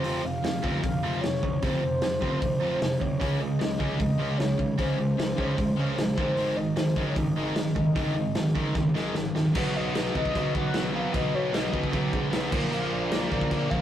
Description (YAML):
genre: punk rock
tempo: 151 BPM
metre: 4/4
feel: straight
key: unclear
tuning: A4 = 440 Hz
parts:
  - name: mellow horn-like synth lead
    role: melody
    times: 0.0-13.8 s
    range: C5 to F#5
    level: -32 LUFS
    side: left 2 dB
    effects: chorus
  - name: biting overdriven guitar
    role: riff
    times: 0.0-13.8 s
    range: F2 to Db4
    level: -30 LUFS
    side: right 4 dB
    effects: none
  - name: sludgy distorted guitar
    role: riff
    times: 0.0-13.8 s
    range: F2 to Db4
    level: -32 LUFS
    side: left 4 dB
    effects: overdrive
  - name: fuzz picked electric bass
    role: bass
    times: 0.0-13.8 s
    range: Eb1 to B2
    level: -35 LUFS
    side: equal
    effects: overdrive
  - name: raw garage drum kit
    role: drums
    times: 0.0-13.8 s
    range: crash cymbal, hi-hat, kick drum, snare drum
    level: -29 LUFS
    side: equal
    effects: none
  - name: fuzz guitar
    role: riff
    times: 9.5-13.8 s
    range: Bb2 to B3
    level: -36 LUFS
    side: right 1 dB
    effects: none
room: moderate stone room reverb, RT60 1.1 s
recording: rough rehearsal-room recording, warm saturation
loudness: -24 LUFS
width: side -11 dB against mid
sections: 0.0-9.5 A section; 9.5-13.8 B section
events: drum fill 8.8-9.5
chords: 0.0 F5; 3.2 Db5; 6.2 Ab; 9.5 B; 12.5 Bb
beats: | 0.03 0.43 0.82 1.22 | 1.62 2.01 2.41 2.81 | 3.20 3.60 3.99 4.39 | 4.79 5.18 5.58 5.97 | 6.37 6.77 7.17 7.56 | 7.96 8.36 8.75 9.15 | 9.55 9.94 10.34 10.74 | 11.13 11.53 11.93 12.32 | 12.72 13.12 13.51